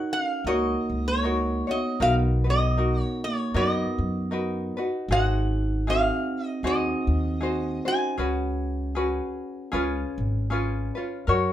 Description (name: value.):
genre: Hawaiian.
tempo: 78 BPM.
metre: 4/4.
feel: swing 58% on 8ths.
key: unclear.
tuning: A4 = 441 Hz.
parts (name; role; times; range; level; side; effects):
metal-body resonator slide guitar; melody; 0.0-8.9 s; C#5 to G#5; -28 LUFS; equal; none.
vibraphone with soft mallets; second line; 0.0-8.9 s; A#3 to D#4; -31 LUFS; right 3 dB; none.
tenor ukulele; accompaniment; 0.0-11.5 s; C#4 to C#5; -28 LUFS; left 1 dB; none.
upright bass; bass; 0.4-11.5 s; G#1 to F#2; -27 LUFS; equal; none.
room: wet small room reverb, RT60 0.5 s.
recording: band playing live in one room.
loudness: -23 LUFS.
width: side -12 dB against mid.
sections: 0.0-11.5 A section.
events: none.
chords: 0.0 F#6; 2.0 Bmaj7; 5.1 G#7; 8.2 C#7sus4; 9.7 C#7.